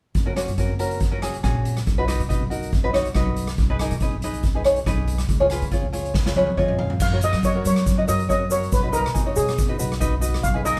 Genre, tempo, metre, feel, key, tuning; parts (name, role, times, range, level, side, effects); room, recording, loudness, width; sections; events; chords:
calypso; 140 BPM; 4/4; swing 53% on 16ths; F# major; A4 = 441 Hz
street-band drum kit; drums; 0.1-10.8 s; crash cymbal, hi-hat, kick drum, rim click, snare drum, toms; -26 LUFS; equal
upright bass; bass; 0.2-10.8 s; F#1 to F#3; -28 LUFS; equal
tenor ukulele; accompaniment; 0.3-10.8 s; C#4 to E#5; -27 LUFS; equal
steel pan; melody; 7.0-10.8 s; G#4 to E#5; -27 LUFS; equal
tube shaker; percussion; 7.0-10.8 s; -37 LUFS; equal
light reverb; band playing live in one room, lossy compression artefacts; -22 LUFS; mono
0.2-7.0 A section; 7.0-10.8 B section
drum fill 6.2-7.0; ukulele fill 6.2-7.0
0.2 F#; 1.9 B; 3.6 G#m/B; 5.3 C#7; 7.0 F#6; 8.7 B6